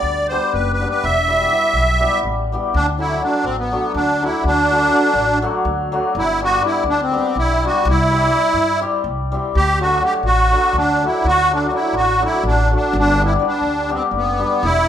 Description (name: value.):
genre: balkan folk, Balkan wedding band.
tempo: 247 BPM (eighths).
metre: 7/8.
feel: straight.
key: unclear.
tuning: A4 = 438 Hz.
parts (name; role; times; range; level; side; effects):
musette accordion; melody; 0.0-14.9 s; B3 to E5; -17 LUFS; right 1 dB; none.
hammered dulcimer; accompaniment; 0.0-14.7 s; F#3 to G4; -21 LUFS; left 3 dB; none.
upright bass; bass; 0.0-14.9 s; E1 to G2; -22 LUFS; equal; none.
room: moderate large studio reverb, RT60 1.0 s.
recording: band playing live in one room.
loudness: -15 LUFS.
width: side -10 dB against mid.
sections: 0.0-2.7 A section; 2.7-14.9 A section.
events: none.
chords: 0.0 G; 1.0 Em; 2.7 D; 6.2 G; 7.8 C; 9.5 D; 12.9 G.